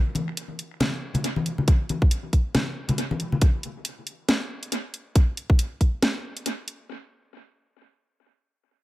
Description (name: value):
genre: deep dubstep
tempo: 138 BPM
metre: 4/4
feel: swing 57% on 16ths, half-time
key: none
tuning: none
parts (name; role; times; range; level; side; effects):
- congas; percussion; 0.1-3.4 s; none; -28 LUFS; left 2 dB; dub echo
- garage drum kit; drums; 0.2-6.8 s; hi-hat, snare drum; -27 LUFS; equal; studio reverb, tape echo
- electronic kick drum; drums; 1.7-5.9 s; none; -18 LUFS; equal; studio reverb
room: digital ambience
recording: echo-heavy mix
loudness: -22 LUFS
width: side -17 dB against mid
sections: 0.0-6.9 A section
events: none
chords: none